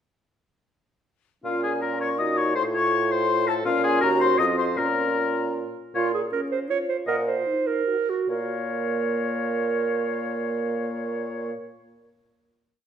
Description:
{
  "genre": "quick classical-period movement for wind quintet",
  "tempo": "139-166 BPM",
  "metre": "3/4",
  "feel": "rubato",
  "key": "Bb minor",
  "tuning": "A4 = 440 Hz",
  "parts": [
    { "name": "silver concert flute", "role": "melody", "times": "1.4-11.5 s", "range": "F5 to Eb6", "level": "-29 LUFS", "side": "left 8 dB", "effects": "none" },
    { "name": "warm oboe", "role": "second line", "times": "1.4-11.5 s", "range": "F4 to Eb5", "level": "-28 LUFS", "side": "left 5 dB", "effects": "none" },
    { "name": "mellow French horn", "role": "accompaniment", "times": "1.4-11.5 s", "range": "Bb3 to Gb4", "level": "-32 LUFS", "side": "equal", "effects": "none" },
    { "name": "warm clarinet", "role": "accompaniment", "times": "1.4-11.5 s", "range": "F4 to Db5", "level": "-27 LUFS", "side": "right 6 dB", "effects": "none" },
    { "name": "mellow bassoon", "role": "bass", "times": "1.4-11.5 s", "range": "Eb2 to Bb2", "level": "-29 LUFS", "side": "right 1 dB", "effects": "none" }
  ],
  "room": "wet recital hall reverb, RT60 1.5 s",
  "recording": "none",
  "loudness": "-22 LUFS",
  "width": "side -8 dB against mid",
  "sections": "1.4-5.9 A section; 5.9-8.3 coda; 8.3-10.8 final chord",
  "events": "slowing down 5.4-8.3",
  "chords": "1.4 Bbm; 2.6 F/A; 3.7 Bbm; 4.0 Cdim/Eb; 4.4 F5; 4.8 Bbm; 7.1 Ebm/Bb; 8.3 Bbm"
}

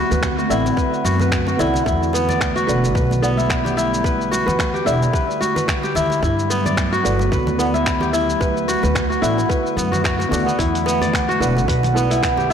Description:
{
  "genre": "organic downtempo",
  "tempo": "110 BPM",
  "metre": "4/4",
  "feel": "swing 56% on 16ths",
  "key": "E minor",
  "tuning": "A4 = 440 Hz",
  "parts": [
    { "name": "warbly tape-like pad", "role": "sustained chords", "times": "0.0-12.5 s", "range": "D3 to F#5", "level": "-24 LUFS", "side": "right 2 dB", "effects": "chorus, built-in reverb, vintage 12-bit sampler grit, sidechain pumping" },
    { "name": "kora", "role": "arpeggios", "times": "0.0-12.5 s", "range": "B3 to D5", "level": "-20 LUFS", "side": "left 1 dB", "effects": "digital delay" },
    { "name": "upright bass", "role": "bass", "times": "0.1-12.5 s", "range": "E1 to G2", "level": "-22 LUFS", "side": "equal", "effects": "tube saturation, sidechain pumping" },
    { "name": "dusty soul sampler-style drum kit", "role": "drums", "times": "0.1-12.5 s", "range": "finger snaps, hi-hat, shaker", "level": "-27 LUFS", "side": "equal", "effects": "soft clipping on snare" },
    { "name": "congas and bongos", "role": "percussion", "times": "0.1-12.5 s", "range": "none", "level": "-31 LUFS", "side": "right 1 dB", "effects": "none" },
    { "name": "electronic kick drum", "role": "drums", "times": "0.2-12.3 s", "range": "none", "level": "-24 LUFS", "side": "equal", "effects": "none" },
    { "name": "deep mellow chord stab", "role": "accompaniment", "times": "0.5-12.1 s", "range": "B3 to F#5", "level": "-27 LUFS", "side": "right 3 dB", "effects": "chorus, sidechain pumping, digital delay" }
  ],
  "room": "moderate lush hall reverb, RT60 2.4 s",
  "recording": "blown-out, overdriven recording, overdrive",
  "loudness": "-16 LUFS",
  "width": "side -8 dB against mid",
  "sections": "0.0-12.5 A section",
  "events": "none",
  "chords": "0.0 D7; 1.9 Em11; 6.2 Gmaj9; 8.4 D; 10.6 Em11"
}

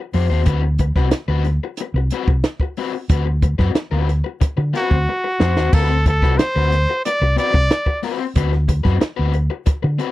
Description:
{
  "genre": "funk",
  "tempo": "91 BPM",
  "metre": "4/4",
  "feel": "straight",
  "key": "D mixolydian",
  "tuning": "A4 = 440 Hz",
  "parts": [
    { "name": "raw garage guitar", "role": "accompaniment", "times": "0.0-10.1 s", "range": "C4 to C5", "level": "-25 LUFS", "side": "left 9 dB", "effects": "overdrive, tube saturation" },
    { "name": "hollow-body short-scale fingered electric bass", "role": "bass", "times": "0.1-10.0 s", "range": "C2 to D3", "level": "-17 LUFS", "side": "equal", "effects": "none" },
    { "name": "compact cocktail drum kit", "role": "drums", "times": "0.1-10.1 s", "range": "crash cymbal, hi-hat, kick drum, snare drum", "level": "-18 LUFS", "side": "equal", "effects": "none" },
    { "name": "bright trumpet", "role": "melody", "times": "4.8-8.0 s", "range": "F#4 to D5", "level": "-19 LUFS", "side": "equal", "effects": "none" }
  ],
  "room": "little or no reverb",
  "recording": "dry, close 1970s-style studio recording",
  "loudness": "-16 LUFS",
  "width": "side -16 dB against mid",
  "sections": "0.0-5.7 A section; 5.7-10.1 B section",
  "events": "drum fill 5.1-5.7",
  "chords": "0.0 D6"
}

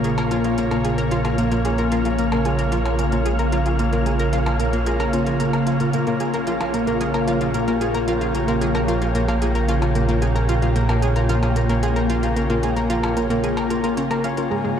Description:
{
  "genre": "ambient, sequencer-driven space music",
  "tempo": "112 BPM",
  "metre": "4/4",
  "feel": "straight",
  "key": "Bb dorian",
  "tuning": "A4 = 438 Hz",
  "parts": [
    { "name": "evolving wavetable pad", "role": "sustained chords", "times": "0.0-14.8 s", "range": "Db3 to Db5", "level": "-24 LUFS", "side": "left 1 dB", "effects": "ensemble chorus, built-in reverb" },
    { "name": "concert harp", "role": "arpeggios", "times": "0.0-14.8 s", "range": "Bb3 to Bb4", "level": "-27 LUFS", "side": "equal", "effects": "auto-pan, ping-pong delay" },
    { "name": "analog pluck", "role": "riff", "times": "0.0-14.8 s", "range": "G#3 to F5", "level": "-24 LUFS", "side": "equal", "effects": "chorus, ping-pong delay" },
    { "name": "analog drone", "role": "bass", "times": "0.0-14.8 s", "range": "G#1 to Bb1", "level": "-23 LUFS", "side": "right 1 dB", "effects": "chorus" },
    { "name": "electronic hi-hat and percussion blips", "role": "percussion", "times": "0.0-14.5 s", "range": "none", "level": "-34 LUFS", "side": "left 1 dB", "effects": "ping-pong delay" },
    { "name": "wind-like tuned noise texture", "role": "texture", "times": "0.0-14.8 s", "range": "E#3 to E#6", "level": "-29 LUFS", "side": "equal", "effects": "built-in reverb" },
    { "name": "breathy mellow wooden flute", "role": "melody", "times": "14.5-14.8 s", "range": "none", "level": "barely audible", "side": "none", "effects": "none" }
  ],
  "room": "wet shimmer reverb, RT60 8.3 s",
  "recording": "dark, warm production",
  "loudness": "-18 LUFS",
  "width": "side -8 dB against mid",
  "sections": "0.0-14.5 A section",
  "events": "none",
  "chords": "0.0 Bbm"
}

